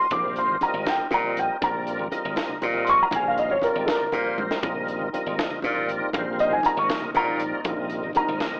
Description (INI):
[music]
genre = electric jazz fusion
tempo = 80 BPM (dotted quarters)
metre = 6/8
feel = straight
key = Bb mixolydian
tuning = A4 = 440 Hz
[part]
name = dark concert grand piano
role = melody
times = 0.0-8.6 s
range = A4 to D6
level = -26 LUFS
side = equal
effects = none
[part]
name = tonewheel organ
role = accompaniment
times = 0.0-8.6 s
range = G3 to F5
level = -31 LUFS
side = equal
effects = slow rotary speaker, overdrive, chorus vibrato
[part]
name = glassy slap bass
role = bass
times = 0.1-8.6 s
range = Ab1 to Bb2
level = -32 LUFS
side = equal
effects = none
[part]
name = crisp fusion drum kit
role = drums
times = 0.1-8.5 s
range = hi-hat, kick drum, snare drum, toms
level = -33 LUFS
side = equal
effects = none
[part]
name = congas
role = percussion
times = 0.1-8.6 s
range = none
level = -38 LUFS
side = equal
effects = none
[part]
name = airy breathy pad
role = sustained chords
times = 5.1-8.6 s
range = C3 to Eb4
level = -38 LUFS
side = equal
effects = none
[sound]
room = moderate large studio reverb, RT60 0.9 s, small room ambience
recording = AM radio sound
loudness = -24 LUFS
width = mono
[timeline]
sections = 0.0-8.6 A section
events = grand piano solo 0.0-8.6; drum fill 4.4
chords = 0.0 Bb9sus4